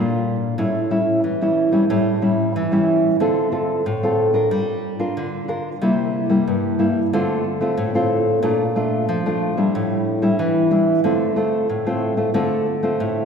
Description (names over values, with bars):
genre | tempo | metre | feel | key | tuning
samba | 92 BPM | 4/4 | straight | D minor | A4 = 439 Hz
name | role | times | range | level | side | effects
nylon-string guitar | solo | 0.0-13.2 s | G2 to Bb4 | -17 LUFS | equal | none
room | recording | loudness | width
wet concert hall reverb, RT60 2.4 s | recorded in a church or concert hall | -17 LUFS | side -6 dB against mid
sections
0.0-13.2 A section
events
none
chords
0.0 Gm7/Bb; 0.6 A7; 3.2 Dm7; 4.5 Gm7; 5.8 C7; 7.1 Dm7; 8.4 Bbmaj7; 9.7 A7sus4; 11.0 Dm7